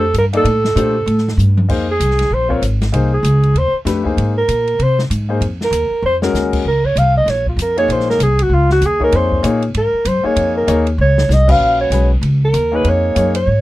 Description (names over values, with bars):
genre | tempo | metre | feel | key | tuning
modal jazz | 194 BPM | 4/4 | swing 61% on 8ths | F phrygian | A4 = 439 Hz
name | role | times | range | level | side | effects
breathy alto saxophone | melody | 0.0-13.6 s | F4 to F5 | -15 LUFS | right 1 dB | none
upright bass | bass | 0.0-13.6 s | Ab1 to C3 | -16 LUFS | equal | none
open jazz drum kit | drums | 0.1-13.4 s | crash cymbal, hi-hat, kick drum, ride cymbal, snare drum, toms | -25 LUFS | equal | none
clear concert grand piano | accompaniment | 0.3-13.3 s | Ab3 to F5 | -19 LUFS | left 4 dB | none
room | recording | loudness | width
little or no reverb | dry, close 1970s-style studio recording | -12 LUFS | side -16 dB against mid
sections
0.0-1.7 A section; 1.7-11.6 B section; 11.6-13.6 B section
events
drum fill 1.4-1.7, 6.0-6.3, 11.0-11.3; alto saxophone solo 1.7-13.6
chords
0.0 Fadd9 (rootless); 1.7 Fm7; 6.7 Bbmadd9; 11.6 Bbm7